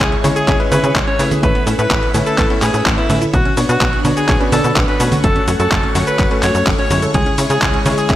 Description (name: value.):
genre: italo disco.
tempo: 126 BPM.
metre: 4/4.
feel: straight.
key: B dorian.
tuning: A4 = 440 Hz.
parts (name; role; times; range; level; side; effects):
edgy alto saxophone; melody; 0.0-8.2 s; E4 to C#5; -20 LUFS; equal; vintage 12-bit sampler grit, tape echo.
string machine, full ensemble; sustained chords; 0.0-8.2 s; D4 to C#6; -23 LUFS; equal; ensemble chorus.
analog pluck; arpeggios; 0.0-8.2 s; G#3 to F#5; -25 LUFS; right 3 dB; chorus, digital delay.
clear electric grand piano; stabs; 0.0-8.2 s; G#3 to C#5; -22 LUFS; left 3 dB; none.
tight sequencer bass; bass; 0.0-8.2 s; F#1 to C#3; -19 LUFS; equal; none.
detuned 8-bit digital drum machine; drums; 0.0-8.2 s; cabasa, congas, handclaps, hi-hat; -19 LUFS; right 1 dB; studio reverb, gated reverb.
electronic kick drum; drums; 0.0-8.2 s; none; -19 LUFS; equal; studio reverb.
room: light reverb, digital ambience.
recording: none.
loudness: -12 LUFS.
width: side -13 dB against mid.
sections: 0.0-8.2 A section.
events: none.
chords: 0.0 C#m; 1.4 Aadd9; 3.3 Bmadd9; 5.2 F#m; 7.1 C#m.